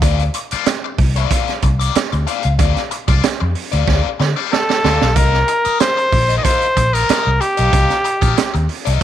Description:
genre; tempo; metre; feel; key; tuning
funk; 94 BPM; 4/4; straight; C dorian; A4 = 440 Hz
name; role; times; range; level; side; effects
biting overdriven guitar; accompaniment; 0.0-9.0 s; F4 to Eb5; -22 LUFS; left 14 dB; wah
vintage muted fingered electric bass; bass; 0.0-9.0 s; Bb1 to D3; -16 LUFS; equal; none
crunchy breakbeat drum kit; drums; 0.0-9.0 s; hi-hat, kick drum, snare drum; -18 LUFS; right 3 dB; none
clear trumpet; melody; 4.5-8.7 s; G4 to Eb5; -16 LUFS; equal; none
room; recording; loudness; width
light reverb, small room reverb; 1960s-style stereo; -13 LUFS; side -11 dB against mid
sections
0.0-5.2 A section; 5.2-9.0 B section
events
drum fill 3.9-5.2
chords
0.0 Dm7; 5.2 Cm7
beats
| 0.02 0.66 1.31 1.95 | 2.59 3.23 3.88 4.52 | 5.16 5.80 6.44 7.08 | 7.73 8.37 9.01

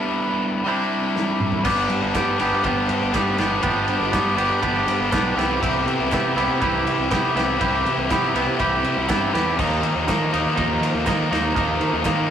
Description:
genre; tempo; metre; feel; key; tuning
indie rock; 121 BPM; 4/4; straight; G mixolydian; A4 = 439 Hz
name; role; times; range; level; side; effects
cranked stack guitar; riff; 0.0-12.3 s; E3 to G4; -22 LUFS; left 4 dB; overdrive
twangy electric guitar; riff; 0.0-12.3 s; E3 to C5; -23 LUFS; right 4 dB; none
loose indie drum kit; drums; 1.2-12.2 s; crash cymbal, kick drum, ride cymbal, snare drum, toms; -26 LUFS; right 1 dB; none
fuzz fingered electric bass; bass; 1.7-12.3 s; G1 to Eb3; -26 LUFS; equal; overdrive
group handclap; percussion; 2.2-12.2 s; none; -37 LUFS; right 3 dB; none
room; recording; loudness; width
moderate small room reverb, RT60 0.6 s; rough rehearsal-room recording, warm saturation; -18 LUFS; side -9 dB against mid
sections
0.0-1.7 A section; 1.7-12.3 B section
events
break 0.0-1.7; drum fill 1.2-1.7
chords
0.0 Em7; 0.7 Cadd9; 1.7 G; 5.4 Cmaj7; 9.6 Ebsus2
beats
0.17 0.67 1.17 | 1.66 2.16 2.65 3.15 | 3.64 4.14 4.63 5.13 | 5.62 6.12 6.62 7.11 | 7.61 8.10 8.59 9.09 | 9.58 10.08 10.57 11.07 | 11.56 12.05

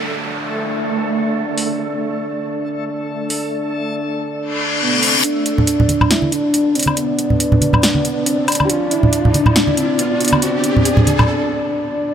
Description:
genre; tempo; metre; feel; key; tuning
deep dubstep; 139 BPM; 4/4; swing 56% on 16ths, half-time; unclear; A4 = 440 Hz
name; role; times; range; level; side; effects
dark analog pad; sustained chords; 0.0-12.1 s; D4 to D5; -21 LUFS; equal; chorus
downlifter, reverse cymbal and riser; sound effects; 0.0-11.3 s; none; -23 LUFS; left 2 dB; none
backwards swelling texture; texture; 0.0-5.3 s; A3 to A4; -24 LUFS; right 2 dB; built-in reverb
deep house drum kit; drums; 1.6-11.3 s; hi-hat, snare drum, woodblock; -19 LUFS; left 1 dB; overdrive, low-pass filter on hats, low-pass filter on perc, low-pass filter on snare
breathy flute-like synth lead; melody; 4.8-11.1 s; B3 to G4; -20 LUFS; equal; lush chorus, dub echo
congas; percussion; 5.6-11.3 s; none; -16 LUFS; right 1 dB; none
room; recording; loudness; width
moderate huge ambient reverb, RT60 8.1 s; none; -14 LUFS; side -9 dB against mid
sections
0.0-5.2 A section; 5.2-12.1 B section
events
filter sweep on drum 0.0-5.2; reverse cymbal 4.5-5.2; build-up 5.2-12.1; riser 5.2-11.3; filter sweep on soft synth lead 5.2-12.1; break 11.3-12.1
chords
0.0 D5; 5.2 N.C.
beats
| 0.06 0.49 0.93 1.36 | 1.79 2.22 2.65 3.08 | 3.52 3.95 4.38 4.81 | 5.24 5.67 6.11 6.54 | 6.97 7.40 7.83 8.27 | 8.70 9.13 9.56 9.99 | 10.42 10.86 11.29 11.72

